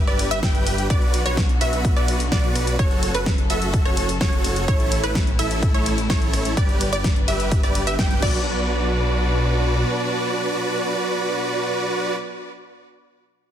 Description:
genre	EDM, festival progressive house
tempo	127 BPM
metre	4/4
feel	straight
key	B minor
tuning	A4 = 435 Hz
part	dark studio string section	sustained chords	0.0-12.2 s	B2 to B4	-30 LUFS	left 2 dB	sidechain pumping
part	wide unison pluck	arpeggios	0.0-12.2 s	B4 to G5	-28 LUFS	right 1 dB	sidechain pumping, digital delay
part	dense compressed supersaw	riff	0.0-12.2 s	E4 to G5	-24 LUFS	right 1 dB	sidechain pumping, digital delay
part	detuned saw bass	bass	0.0-9.8 s	F#1 to B1	-25 LUFS	equal	sidechain pumping
part	big-room dance drum kit	drums	0.1-8.3 s	crash cymbal, hi-hat, ride cymbal, rim click, snare drum	-28 LUFS	equal	small room reverb
part	electronic kick drum	drums	0.4-8.3 s	none	-21 LUFS	equal	overdrive, small room reverb
room	light reverb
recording	dense, heavily limited modern master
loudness	-18 LUFS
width	side -10 dB against mid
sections	0.0-8.5 A section; 8.5-12.2 B section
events	drop 0.0-8.5; band accent 8.0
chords	0.0 G; 0.9 Bm; 2.8 F#m; 4.7 A; 6.6 G; 8.2 Bm

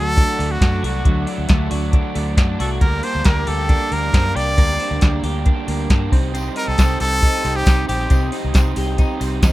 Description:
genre	jangly indie pop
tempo	136 BPM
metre	4/4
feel	straight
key	G harmonic minor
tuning	A4 = 440 Hz
part	clear trumpet	melody	0.0-8.3 s	F#4 to D5	-23 LUFS	equal	none
part	crunchy overdriven guitar	accompaniment	0.0-9.5 s	C3 to Eb4	-28 LUFS	right 8 dB	none
part	warm analog pad	sustained chords	0.0-9.5 s	Bb3 to Eb6	-34 LUFS	left 1 dB	chorus
part	twelve-string electric guitar	arpeggios	0.0-9.5 s	F#3 to G4	-26 LUFS	left 3 dB	wide subtle chorus
part	vintage muted fingered electric bass	bass	0.0-9.5 s	Bb1 to G2	-22 LUFS	equal	none
part	soft vintage rhythm box	drums	0.2-9.5 s	hi-hat, kick drum, snare drum	-16 LUFS	equal	none
part	tambourine	percussion	6.3-9.5 s	none	-38 LUFS	left 4 dB	none
room	little or no reverb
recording	rough home demo mix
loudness	-15 LUFS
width	side -16 dB against mid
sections	0.0-9.5 A section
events	none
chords	0.0 D; 2.8 Gm; 6.1 Cm

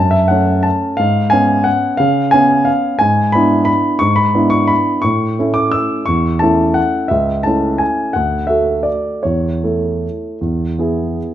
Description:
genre	classical, piano waltz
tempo	150-186 BPM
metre	3/4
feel	rubato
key	A major from 3.0 s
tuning	A4 = 440 Hz
part	warm grand piano	solo	0.0-11.3 s	C#2 to E6	-12 LUFS	equal	none
room	moderate large studio reverb, RT60 1.1 s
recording	dark, warm production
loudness	-12 LUFS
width	side -11 dB against mid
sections	0.0-11.3 A section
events	none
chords	0.0 F#m; 1.0 C#7/G#; 3.0 E7/G#; 5.0 A; 7.1 A/C#; 8.2 D; 9.3 A/E; 10.4 E

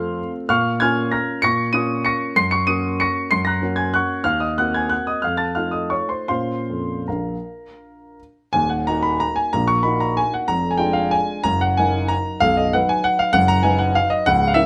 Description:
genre	classical, piano waltz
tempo	149-208 BPM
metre	3/4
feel	rubato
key	Bb minor, Eb minor from 8.5 s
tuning	A4 = 440 Hz
part	warm grand piano	solo	0.0-14.7 s	B0 to Eb7	-20 LUFS	equal	none
room	light reverb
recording	none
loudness	-20 LUFS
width	mono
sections	0.0-8.5 A section; 8.5-14.7 B section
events	none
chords	0.5 Bbm; 2.4 Gb; 4.3 Cm7b5/Eb; 5.2 F7; 6.3 Bbm; 8.5 Ebm; 10.5 Ddim/F; 11.5 Ebm/Gb; 12.4 B

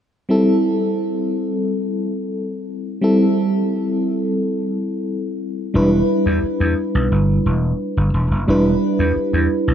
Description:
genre	1980s-style pop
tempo	88 BPM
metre	4/4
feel	straight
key	unclear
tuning	A4 = 439 Hz
part	FM electric piano with tremolo	accompaniment	0.3-9.7 s	G3 to B4	-18 LUFS	equal	none
part	vintage slap bass	bass	5.8-9.7 s	E1 to E2	-18 LUFS	equal	none
room	wet lush hall reverb, RT60 3.0 s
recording	dreamy mix soaked in reverb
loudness	-16 LUFS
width	side -9 dB against mid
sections	0.3-9.7 A section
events	none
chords	0.3 Am7; 5.8 Em7

